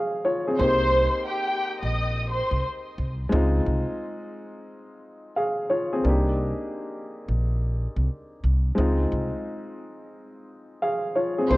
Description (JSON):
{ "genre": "hip hop, boom-bap hip-hop", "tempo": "88 BPM", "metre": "4/4", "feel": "swing 62% on 16ths", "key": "unclear", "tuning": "A4 = 440 Hz", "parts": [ { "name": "dark grand piano", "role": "accompaniment", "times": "0.0-11.6 s", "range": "Ab3 to F5", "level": "-27 LUFS", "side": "equal", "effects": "cassette tape, high-pass filter, low-pass filter" }, { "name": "warm symphonic violin section", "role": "melody", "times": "0.6-2.6, 11.5-11.6 s", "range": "G4 to Eb6", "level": "-24 LUFS", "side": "equal", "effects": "high-pass filter, low-pass filter" }, { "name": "upright bass", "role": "bass", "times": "0.6-11.6 s", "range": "Bb1 to Db2", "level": "-24 LUFS", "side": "equal", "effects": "none" } ], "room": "light reverb, small room ambience", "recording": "worn, warbling old tape, cassette tape, warbly pitch drift", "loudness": "-22 LUFS", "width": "side -19 dB against mid", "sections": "0.0-11.5 A section", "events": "none", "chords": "0.0 Dbmaj7; 0.6 Cm7; 3.3 Dbmaj7; 6.0 Cm9; 8.8 Dbmaj7", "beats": "| 0.59 1.27 1.96 2.64 | 3.32 4.00 4.68 5.36 | 6.05 6.73 7.41 8.09 | 8.77 9.46 10.14 10.82 | 11.50" }